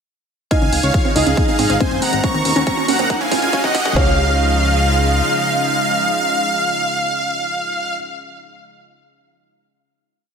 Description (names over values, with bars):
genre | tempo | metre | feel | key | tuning
uplifting trance | 139 BPM | 4/4 | straight | Db major | A4 = 439 Hz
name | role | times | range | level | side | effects
dense compressed supersaw | melody | 0.5-7.9 s | Ab4 to Db6 | -18 LUFS | right 1 dB | sidechain pumping, ping-pong delay
felt-muted upright piano | second line | 0.5-7.9 s | C4 to Eb5 | -23 LUFS | left 1 dB | ping-pong delay
lush unison pad | sustained chords | 0.9-7.9 s | C3 to Gb4 | -24 LUFS | equal | chorus, sidechain pumping
wide unison pluck | arpeggios | 0.5-4.2 s | C4 to Db4 | -24 LUFS | moving between left 3 dB and right 7 dB | auto-pan, sidechain pumping, ping-pong delay
electronic hi-hat | drums | 0.5-3.9 s | none | -25 LUFS | right 3 dB | none
electronic kick drum | drums | 0.5-4.0 s | none | -20 LUFS | equal | none
riser | sound effects | 1.6-4.0 s | none | -26 LUFS | right 2 dB | none
fat analog bass | bass | 0.6-5.2 s | Gb1 to Ab2 | -19 LUFS | equal | sidechain pumping
room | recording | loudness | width
light reverb | high-pass filter | -14 LUFS | side -6 dB against mid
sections
0.5-4.0 build; 4.0-7.4 final chord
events
build-up 0.5-4.0; filter sweep on synth arpeggio sound 0.5-4.0; filter sweep 0.5-4.0; riser 1.6-4.0; drum fill 2.2-4.0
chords
0.5 Dbadd9; 1.4 Ab; 2.2 Ebm; 3.1 Gb6; 4.0 Dbadd9